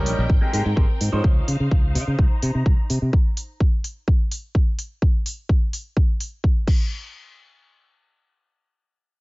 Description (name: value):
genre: filtered disco house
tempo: 127 BPM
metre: 4/4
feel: straight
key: unclear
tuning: A4 = 439 Hz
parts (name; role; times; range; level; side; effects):
- bright baby grand piano; accompaniment; 0.0-1.5 s; F3 to C5; -27 LUFS; right 1 dB; phaser, sidechain pumping, low-pass filter
- clear symphonic string section; sustained chords; 0.0-3.1 s; C4 to Bb5; -35 LUFS; left 1 dB; vintage 12-bit sampler grit, sidechain pumping, low-pass filter
- modern bright fingered electric bass; bass; 0.0-3.1 s; Ab1 to Db3; -22 LUFS; equal; sidechain pumping, low-pass filter
- house drum kit; drums; 0.1-6.8 s; crash cymbal, hi-hat; -32 LUFS; equal; sidechain pumping on hats, sidechain pumping on perc, sidechain pumping on cymbals
- electronic kick drum; drums; 0.3-6.8 s; none; -18 LUFS; equal; none
room: small room ambience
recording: nothing above 7.6 kHz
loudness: -18 LUFS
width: side -24 dB against mid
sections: 0.0-6.9 A section; 6.9-9.2 B section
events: none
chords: 0.3 Abmaj9; 1.2 Dbmaj9; 2.2 Cm7; 3.1 N.C.